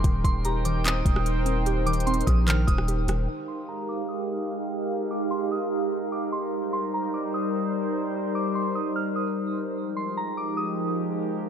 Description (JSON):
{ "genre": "hip hop, atmospheric cloud-rap", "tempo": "148 BPM", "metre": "4/4", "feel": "half-time", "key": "F dorian", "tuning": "A4 = 441 Hz", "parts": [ { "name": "soft synth bell", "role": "melody", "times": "0.0-11.3 s", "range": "Bb5 to F6", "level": "-32 LUFS", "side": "right 1 dB", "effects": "chorus, low-pass filter, tape echo" }, { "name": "warbly tape-like pad", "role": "sustained chords", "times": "0.0-11.5 s", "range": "F3 to G5", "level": "-28 LUFS", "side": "equal", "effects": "chorus, built-in reverb, sidechain pumping, low-pass filter" }, { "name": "mallet-like synth pluck", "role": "arpeggios", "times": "0.0-3.3 s", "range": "Eb3 to G4", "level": "-33 LUFS", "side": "equal", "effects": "chorus, phaser, low-pass filter, tape echo" }, { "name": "long sustained 808-style bass", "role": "bass", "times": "0.0-3.3 s", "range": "Eb1 to Bb1", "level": "-25 LUFS", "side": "equal", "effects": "none" }, { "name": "smooth R&B drum kit", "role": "drums", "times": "0.0-3.2 s", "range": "handclaps, hi-hat, kick drum, rim click", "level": "-25 LUFS", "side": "equal", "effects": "none" } ], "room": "light reverb, digital ambience", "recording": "none", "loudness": "-24 LUFS", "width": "side -8 dB against mid", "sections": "0.0-3.3 A section; 3.3-11.5 B section", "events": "filter sweep 3.3-11.5", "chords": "0.0 Eb6; 3.3 Fm11; 6.5 Eb6; 9.8 Fm11", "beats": "| 0.04 0.45 0.85 1.26 | 1.66 2.07 2.48 2.88 | 3.29 3.69 4.10 4.50 | 4.91 5.31 5.72 6.12 | 6.53 6.93 7.34 7.75 | 8.15 8.56 8.96 9.37 | 9.77 10.18 10.58 10.99 | 11.39" }